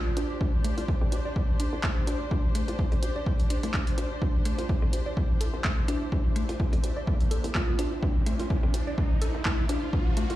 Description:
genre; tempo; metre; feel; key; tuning
minimal techno; 126 BPM; 4/4; swing 55% on 16ths; unclear; A4 = 438 Hz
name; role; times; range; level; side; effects
flickering grainy texture; texture; 0.0-10.4 s; D4 to D5; -41 LUFS; right 2 dB; built-in reverb, sidechain pumping
rich studio string section; texture; 0.0-10.4 s; D4 to C5; -38 LUFS; left 2 dB; sidechain pumping
folk marimba with medium mallets; melody; 0.1, 7.6-7.7 s; F4; -37 LUFS; right 3 dB; dub echo
mallet-like synth pluck; riff; 0.2-10.3 s; A3 to D5; -36 LUFS; left 1 dB; chorus, cassette tape, sidechain pumping, tape echo
hollow knocking FM bass; bass; 0.2-10.4 s; C2 to F2; -39 LUFS; equal; sidechain pumping, high-pass filter
punchy analog drum machine; drums; 0.2-10.4 s; handclaps, hi-hat; -34 LUFS; equal; high-pass filter on hats, high-pass filter on snare, high-pass filter on room
electronic kick drum; drums; 0.4-10.0 s; none; -26 LUFS; equal; none
riser; sound effects; 5.1-10.4 s; none; -37 LUFS; right 1 dB; none
room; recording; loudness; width
light reverb; played on a big sound system in a bare room, large studio reverb; -25 LUFS; side -15 dB against mid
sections
0.0-10.4 A section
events
build-up 0.0-10.4; filter sweep on synth arpeggio sound 0.0-10.4; riser 5.1-10.4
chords
0.0 D7(no3)

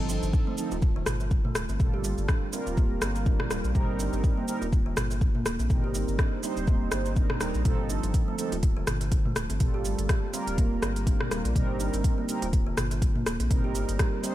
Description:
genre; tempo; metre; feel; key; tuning
afro house; 123 BPM; 4/4; swing 56% on 16ths; G minor; A4 = 440 Hz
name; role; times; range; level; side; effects
mellow synth brass; stabs; 0.0-14.3 s; F3 to C5; -34 LUFS; right 3 dB; chorus, sidechain pumping, digital delay
round analog bass; bass; 0.0-14.0 s; D1 to Bb1; -31 LUFS; equal; tube saturation, sidechain pumping
kalimba; arpeggios; 0.1-14.3 s; D3 to G4; -34 LUFS; equal; sidechain pumping, digital delay
afro-pop drum kit; drums; 0.1-14.3 s; hi-hat, rim click, shaker, toms; -32 LUFS; equal; studio reverb
electronic kick drum; drums; 0.3-14.1 s; none; -25 LUFS; equal; studio reverb
room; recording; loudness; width
little or no reverb; none; -24 LUFS; side -14 dB against mid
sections
0.0-14.3 A section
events
none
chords
0.0 F7; 1.8 Gm9; 3.7 Eb6; 5.7 Cm7; 7.7 F7; 9.6 Gm9; 11.6 Eb6; 13.5 Cm7

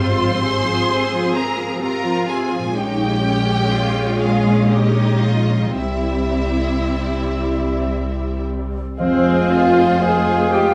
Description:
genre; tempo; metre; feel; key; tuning
classical, slow romantic movement for symphony orchestra; 53-64 BPM; 3/4; rubato; F minor; A4 = 443 Hz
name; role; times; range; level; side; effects
rich studio violin section; melody; 0.0-10.7 s; Ab4 to C6; -29 LUFS; equal; none
rich studio violin section; second line; 0.0-10.7 s; Eb4 to C5; -30 LUFS; equal; none
rich studio viola section; accompaniment; 0.0-10.7 s; C3 to Ab4; -23 LUFS; equal; none
concert harp; arpeggios; 0.0-10.7 s; Ab2 to Db5; -30 LUFS; equal; none
clear studio double bass section; bass; 0.0-10.7 s; F1 to C2; -24 LUFS; equal; none
rich studio cello section; bass; 0.0-10.7 s; F2 to Ab4; -28 LUFS; equal; none
hollow concert flute; second line; 9.0-10.7 s; C5 to Ab5; -23 LUFS; equal; none
mellow clarinet; second line; 9.0-10.7 s; C5; -31 LUFS; equal; none
warm oboe; second line; 9.0-10.7 s; F5; -27 LUFS; equal; none
warm bassoon; accompaniment; 9.0-10.7 s; Ab3; -27 LUFS; equal; none
mellow French horn section; sustained chords; 9.0-10.7 s; Ab3 to F4; -26 LUFS; equal; none
room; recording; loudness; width
wet stone room reverb, RT60 1.1 s; none; -18 LUFS; mono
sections
0.0-9.0 A section; 9.0-10.7 B section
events
none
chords
0.0 Fm/Ab; 2.8 Bbm7; 5.8 C; 9.0 Fm

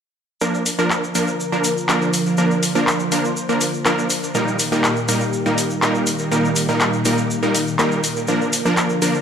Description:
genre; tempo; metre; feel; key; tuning
progressive house; 122 BPM; 4/4; straight; Bb major; A4 = 440 Hz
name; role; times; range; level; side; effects
lush unison pad; sustained chords; 0.9-9.2 s; Bb2 to C5; -23 LUFS; equal; chorus, phaser
supersaw stab; stabs; 0.4-9.2 s; Bb2 to Bb4; -19 LUFS; right 1 dB; dub echo
tube shaker; percussion; 0.4-9.2 s; none; -27 LUFS; equal; none
house drum kit; drums; 0.7-9.1 s; handclaps, hi-hat; -22 LUFS; left 1 dB; studio reverb
room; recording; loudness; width
wet recital hall reverb, RT60 1.6 s, digital ambience; none; -16 LUFS; side -7 dB against mid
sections
0.4-9.2 A section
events
none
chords
0.4 Bb; 4.3 Eb/Bb; 8.3 Bb

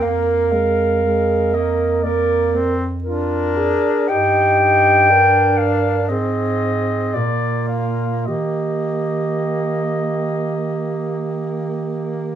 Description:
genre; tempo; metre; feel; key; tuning
classical, lyrical piece for single-reed quartet; 51-61 BPM; 4/4; rubato; Eb major; A4 = 440 Hz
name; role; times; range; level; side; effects
warm clarinet; melody; 0.0-12.3 s; Bb4 to G5; -20 LUFS; left 2 dB; none
warm alto saxophone; second line; 0.0-12.4 s; F4 to Bb4; -21 LUFS; right 5 dB; none
clear tenor saxophone; accompaniment; 0.0-12.4 s; Ab3 to Eb4; -24 LUFS; equal; none
mellow bass clarinet; bass; 0.0-12.4 s; F2 to Eb3; -23 LUFS; right 1 dB; none
room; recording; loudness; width
moderate studio reverb, RT60 0.9 s; small room ambience; -16 LUFS; side -9 dB against mid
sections
0.0-12.4 A section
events
none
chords
0.0 Bb7/F; 4.1 Eb/G; 6.1 Ab; 7.2 Bb; 8.3 Eb

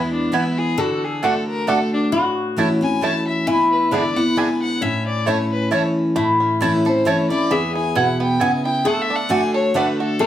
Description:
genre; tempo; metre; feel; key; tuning
bluegrass; 134 BPM; 3/4; swing 54% on 8ths; A major; A4 = 440 Hz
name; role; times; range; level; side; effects
warm fiddle; melody; 0.0-10.3 s; D4 to A5; -24 LUFS; left 2 dB; none
lap resonator guitar; second line; 0.0-10.3 s; C#4 to B4; -22 LUFS; left 2 dB; none
picked steel-string acoustic guitar; accompaniment; 0.0-10.3 s; E2 to F#4; -21 LUFS; equal; none
bluegrass banjo; melody; 0.3-10.3 s; A3 to A4; -27 LUFS; right 4 dB; none
mandolin; stabs; 0.3-9.9 s; A3 to B5; -21 LUFS; right 4 dB; none
room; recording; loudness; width
wet studio ambience, RT60 0.5 s; heard from further back in the room; -16 LUFS; side -11 dB against mid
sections
0.0-6.2 A section; 6.2-10.3 A section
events
none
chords
0.0 E; 0.8 D; 2.1 A; 3.5 E7; 4.8 A; 7.5 Eadd9; 8.9 D

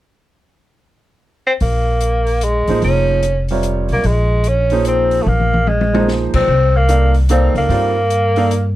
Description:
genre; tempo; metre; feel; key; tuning
modal jazz; 148 BPM; 3/4; swing 64% on 8ths; Bb dorian; A4 = 440 Hz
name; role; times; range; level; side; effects
warm tenor saxophone; melody; 1.5-8.7 s; Ab3 to Db4; -16 LUFS; equal; none
upright bass; bass; 1.6-8.7 s; F1 to G2; -16 LUFS; equal; none
open jazz drum kit; drums; 1.6-8.6 s; crash cymbal, hi-hat, kick drum, snare drum, toms; -24 LUFS; left 2 dB; none
clear concert grand piano; accompaniment; 2.7-8.5 s; C3 to F5; -20 LUFS; right 4 dB; none
room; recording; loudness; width
light reverb; dark, warm production; -13 LUFS; side -15 dB against mid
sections
0.4-1.6 A section; 1.6-8.8 B section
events
drum fill 5.3-6.1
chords
0.4 N.C.; 1.6 Bbm9; 6.5 Cm9

